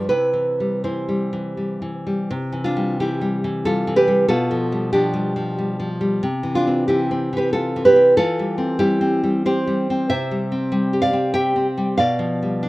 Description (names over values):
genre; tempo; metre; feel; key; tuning
romantic piece for solo classical guitar; 80-98 BPM; 3/4; rubato; C major; A4 = 441 Hz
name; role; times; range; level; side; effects
nylon-string guitar; solo; 0.0-12.7 s; B2 to G5; -18 LUFS; equal; none
room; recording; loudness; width
light reverb, small room ambience; rough home demo mix; -17 LUFS; side -19 dB against mid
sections
0.0-2.3 A section; 2.3-12.7 B section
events
none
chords
0.1 C; 4.3 G7/B; 6.2 C; 8.2 C/E; 10.1 C; 12.0 G7/B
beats
| 0.10 0.84 1.59 | 2.31 2.99 3.65 | 4.30 4.95 5.60 | 6.24 6.90 7.55 | 8.18 8.80 9.47 | 10.11 10.73 11.36 | 11.98 12.62